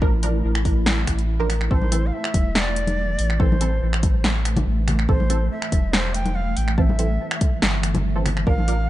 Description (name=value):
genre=deep dubstep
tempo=142 BPM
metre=4/4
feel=half-time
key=A minor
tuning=A4 = 440 Hz
part: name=granular cloud pad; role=sustained chords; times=0.0-8.9 s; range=E3 to E4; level=-30 LUFS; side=equal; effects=built-in reverb
part: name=filtered dub chord stab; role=stabs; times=0.0-8.7 s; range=E3 to Bb4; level=-29 LUFS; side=right 2 dB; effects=ensemble chorus, vintage 12-bit sampler grit, dub echo
part: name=soft dub sub bass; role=bass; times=0.0-8.9 s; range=E1 to A1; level=-22 LUFS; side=equal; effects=none
part: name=electronic kick drum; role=drums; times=0.0-8.6 s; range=none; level=-20 LUFS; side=equal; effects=none
part: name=deep house drum kit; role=drums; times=0.2-8.8 s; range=finger snaps, hi-hat, snare drum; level=-24 LUFS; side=equal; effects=none
part: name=breathy bright shakuhachi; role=melody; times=1.7-8.9 s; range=C5 to G5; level=-30 LUFS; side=equal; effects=dub echo
part: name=congas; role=percussion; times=1.8-8.7 s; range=none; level=-29 LUFS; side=left 1 dB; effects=none
room=light reverb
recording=dark, warm production, nothing above 10.4 kHz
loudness=-18 LUFS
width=side -15 dB against mid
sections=0.0-8.9 A section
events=none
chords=0.0 Bb; 1.7 Am